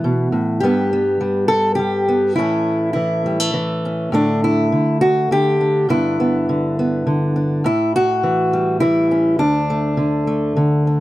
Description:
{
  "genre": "folk, solo fingerstyle acoustic guitar",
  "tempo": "102 BPM",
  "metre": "3/4",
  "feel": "straight",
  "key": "unclear",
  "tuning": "A4 = 442 Hz",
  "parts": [
    { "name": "fingerpicked acoustic archtop guitar", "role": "solo", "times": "0.0-11.0 s", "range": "D2 to A4", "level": "-15 LUFS", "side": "equal", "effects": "none" }
  ],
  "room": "light reverb",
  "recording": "dry, close 1970s-style studio recording",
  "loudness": "-15 LUFS",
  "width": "side -16 dB against mid",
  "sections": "0.0-11.0 A section",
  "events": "none",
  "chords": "0.0 Asus2; 0.6 Gadd9; 2.4 A; 4.1 Asus4; 5.9 G; 7.7 A7; 9.4 D5"
}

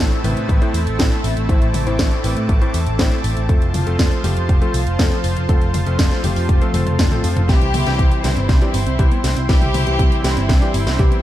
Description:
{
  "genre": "italo disco",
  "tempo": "120 BPM",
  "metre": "4/4",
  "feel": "straight",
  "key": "unclear",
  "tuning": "A4 = 438 Hz",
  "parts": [
    { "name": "lush unison pad", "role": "sustained chords", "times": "0.0-11.2 s", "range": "F3 to E6", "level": "-25 LUFS", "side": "right 1 dB", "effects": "chorus" },
    { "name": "warm electric grand piano", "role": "stabs", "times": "0.0-11.2 s", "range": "A2 to C5", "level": "-25 LUFS", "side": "left 2 dB", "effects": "ping-pong delay" },
    { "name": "picked electric bass with an envelope filter", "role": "bass", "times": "0.0-11.1 s", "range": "F1 to A2", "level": "-20 LUFS", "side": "equal", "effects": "none" },
    { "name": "house drum kit", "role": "drums", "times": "0.1-11.2 s", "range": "hi-hat, snare drum, toms", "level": "-24 LUFS", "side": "equal", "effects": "none" },
    { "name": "electronic kick drum", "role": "drums", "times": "0.5-11.1 s", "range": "none", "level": "-16 LUFS", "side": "equal", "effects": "none" },
    { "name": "clear studio violin section", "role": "melody", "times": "7.5-11.2 s", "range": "G3 to G4", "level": "-24 LUFS", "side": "left 1 dB", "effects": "digital delay" },
    { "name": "soft round pluck", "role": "arpeggios", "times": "7.5-11.2 s", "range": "C3 to G4", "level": "-28 LUFS", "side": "right 5 dB", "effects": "chorus, ping-pong delay" }
  ],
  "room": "light reverb",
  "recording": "dark, warm production",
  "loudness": "-14 LUFS",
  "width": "side -13 dB against mid",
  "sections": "0.0-7.5 A section; 7.5-11.2 B section",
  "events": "drum fill 6.7-7.5, 7.5-11.2",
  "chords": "0.0 Am; 3.5 F; 7.5 C"
}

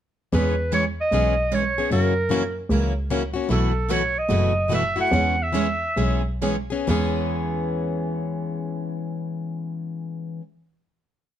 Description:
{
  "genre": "acoustic string swing (jazz manouche)",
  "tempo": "128-152 BPM",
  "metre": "4/4",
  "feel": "swing 63% on 8ths",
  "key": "E major",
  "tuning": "A4 = 440 Hz",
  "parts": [
    { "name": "bright clarinet", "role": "melody", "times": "0.3-6.3 s", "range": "A4 to F#5", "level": "-23 LUFS", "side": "right 2 dB", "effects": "none" },
    { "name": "picked plugged-in steel-string acoustic guitar", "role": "accompaniment", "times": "0.3-10.4 s", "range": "B2 to G#4", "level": "-27 LUFS", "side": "left 6 dB", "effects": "none" },
    { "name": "picked steel-string acoustic guitar", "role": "accompaniment", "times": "0.3-10.4 s", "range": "B2 to C#5", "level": "-29 LUFS", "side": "right 7 dB", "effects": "none" },
    { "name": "rich double bass", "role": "bass", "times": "0.3-10.4 s", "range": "F#1 to F#2", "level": "-24 LUFS", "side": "equal", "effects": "none" }
  ],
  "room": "light reverb",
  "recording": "dark, warm production",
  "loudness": "-21 LUFS",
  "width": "side -10 dB against mid",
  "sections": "0.3-6.9 A section; 6.9-10.6 final chord",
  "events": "slowing down 3.5-6.9",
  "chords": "0.3 E6; 1.9 F#7; 3.5 B7sus4; 5.1 E6"
}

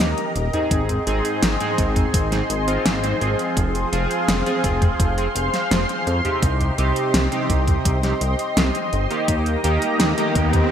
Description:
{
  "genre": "synthwave",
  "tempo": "84 BPM",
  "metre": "4/4",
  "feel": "straight",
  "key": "F minor",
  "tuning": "A4 = 442 Hz",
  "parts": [
    { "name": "analog string pad", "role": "sustained chords", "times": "0.0-10.7 s", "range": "G4 to C6", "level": "-24 LUFS", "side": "left 1 dB", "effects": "ensemble chorus, vintage 12-bit sampler grit, sidechain pumping" },
    { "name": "chorused polysynth", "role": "stabs", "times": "0.0-10.7 s", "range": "Ab2 to C5", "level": "-24 LUFS", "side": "right 2 dB", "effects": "digital delay" },
    { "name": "chorused synth bass", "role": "bass", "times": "0.0-10.6 s", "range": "Eb1 to F2", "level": "-23 LUFS", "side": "equal", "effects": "none" },
    { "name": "pop drum kit", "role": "drums", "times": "0.0-10.7 s", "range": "hi-hat, snare drum, toms", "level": "-24 LUFS", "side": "equal", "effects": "overdrive, gated reverb" },
    { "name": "electronic kick drum", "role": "drums", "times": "0.7-10.7 s", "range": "none", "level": "-22 LUFS", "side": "equal", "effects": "overdrive" },
    { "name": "riser", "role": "sound effects", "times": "9.8-10.7 s", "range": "none", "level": "-27 LUFS", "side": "left 1 dB", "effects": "none" }
  ],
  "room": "moderate plate reverb, RT60 2.9 s",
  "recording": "bright 1980s-style digital production",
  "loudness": "-18 LUFS",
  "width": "side -9 dB against mid",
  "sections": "0.0-10.7 A section",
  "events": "riser 9.8-10.7",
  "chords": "0.0 Eb; 0.7 Ab; 3.6 Fm; 6.4 Cm; 9.3 Eb"
}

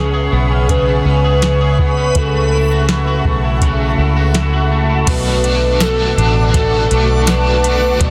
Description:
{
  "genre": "dream pop",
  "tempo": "82 BPM",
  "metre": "4/4",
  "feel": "straight",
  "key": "B dorian",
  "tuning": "A4 = 445 Hz",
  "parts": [
    { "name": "hollow clarinet-like synth lead", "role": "melody", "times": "0.0-8.1 s", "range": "G#4 to D5", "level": "-22 LUFS", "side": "equal", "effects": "chorus, phaser, tape echo" },
    { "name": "ethereal airy pad", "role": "sustained chords", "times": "0.0-8.1 s", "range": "A4 to D6", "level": "-27 LUFS", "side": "equal", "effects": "ensemble chorus, built-in reverb" },
    { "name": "electric guitar at the edge of break-up", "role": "arpeggios", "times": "0.0-8.1 s", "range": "B2 to A4", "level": "-20 LUFS", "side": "equal", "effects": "ensemble chorus, tape echo" },
    { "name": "vintage muted fingered electric bass", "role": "bass", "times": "0.0-8.1 s", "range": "A1 to C#2", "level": "-18 LUFS", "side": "equal", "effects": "none" },
    { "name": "backwards swelling texture", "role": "texture", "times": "0.8-7.4 s", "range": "B4 to D5", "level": "-32 LUFS", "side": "equal", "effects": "built-in reverb, tape echo" },
    { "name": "soft vintage rhythm box", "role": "drums", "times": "0.7-8.1 s", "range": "crash cymbal, hi-hat, kick drum, snare drum, tambourine", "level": "-19 LUFS", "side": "equal", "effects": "none" },
    { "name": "crunchy overdriven guitar", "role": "accompaniment", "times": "5.1-8.1 s", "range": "B2 to F#4", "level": "-23 LUFS", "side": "equal", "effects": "tremolo, ensemble chorus" }
  ],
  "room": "light reverb, digital ambience",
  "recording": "dense, heavily limited modern master",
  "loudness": "-14 LUFS",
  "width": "mono",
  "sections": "0.0-5.1 A section; 5.1-8.1 B section",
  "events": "none",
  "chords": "0.0 C#m7; 2.2 F#m7; 5.1 Bm7"
}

